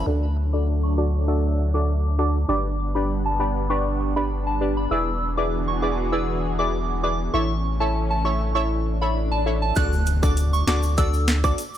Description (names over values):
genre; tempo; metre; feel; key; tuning
dancehall; 99 BPM; 4/4; straight; D major; A4 = 438 Hz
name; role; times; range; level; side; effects
soft synth bell; melody; 0.0-11.5 s; A5 to F#6; -28 LUFS; right 1 dB; chorus, phaser, low-pass filter, tape echo
synth brass stab; accompaniment; 0.0-11.6 s; D4 to E5; -27 LUFS; left 1 dB; chorus, low-pass filter
lush unison pad; sustained chords; 0.0-9.7 s; E3 to G#4; -30 LUFS; right 1 dB; chorus, phaser, sidechain pumping, low-pass filter
punchy sub bass; bass; 0.0-11.5 s; E1 to D2; -23 LUFS; equal; none
swell and impact; sound effects; 8.7-11.8 s; none; -32 LUFS; left 1 dB; none
island pop drum kit; drums; 9.8-11.7 s; hi-hat, kick drum, rim click, snare drum; -22 LUFS; equal; none
tube shaker; percussion; 9.8-11.8 s; none; -40 LUFS; right 2 dB; none
room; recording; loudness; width
little or no reverb; none; -20 LUFS; side -11 dB against mid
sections
0.1-9.8 A section; 9.8-11.8 B section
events
filter sweep 0.1-9.8; swell 8.7-9.8; impact 9.8-11.8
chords
0.1 D; 2.5 G; 4.9 E7; 7.3 A; 9.8 D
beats
| 0.07 0.67 1.28 1.89 | 2.49 3.10 3.70 4.31 | 4.92 5.52 6.13 6.73 | 7.34 7.95 8.55 9.16 | 9.76 10.37 10.98 11.58